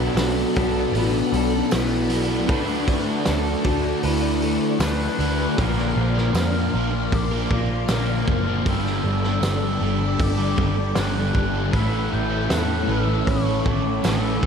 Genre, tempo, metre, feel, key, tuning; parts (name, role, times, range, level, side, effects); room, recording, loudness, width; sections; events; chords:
rock, shoegaze and dream pop; 78 BPM; 4/4; straight; A4 = 438 Hz
pure breathy sine lead; melody; 0.0-14.5 s; C#4 to G6; -29 LUFS; left 3 dB; chorus, ping-pong delay
string machine, full ensemble; sustained chords; 0.0-14.5 s; C#4 to C#6; -30 LUFS; equal; phaser, ensemble chorus
electric guitar through a small old amp; arpeggios; 0.0-5.6, 11.7-14.5 s; C#4 to B4; -30 LUFS; right 2 dB; lush chorus, ping-pong delay
crunchy overdriven guitar; riff; 0.0-14.5 s; G2 to Bb4; -29 LUFS; right 7 dB; reverse reverb
crunchy overdriven guitar; riff; 0.0-14.5 s; G2 to D4; -29 LUFS; equal; ensemble chorus
thick fuzz guitar; riff; 0.0-14.5 s; G2 to D4; -27 LUFS; left 8 dB; distortion, lush chorus
vintage muted picked electric bass; bass; 0.0-14.5 s; F#1 to F2; -25 LUFS; right 1 dB
loose indie drum kit; drums; 0.2-14.5 s; hi-hat, kick drum, snare drum; -27 LUFS; equal
tambourine; percussion; 0.2-14.2 s; -41 LUFS; right 13 dB
moderate lush hall reverb, RT60 2.8 s; dreamy mix soaked in reverb; -19 LUFS; side -6 dB against mid
0.0-5.6 A section; 5.6-14.5 B section
0.0 Bm7; 2.5 Dmaj7; 5.6 Bbadd9; 8.7 Gadd9; 11.7 Aadd9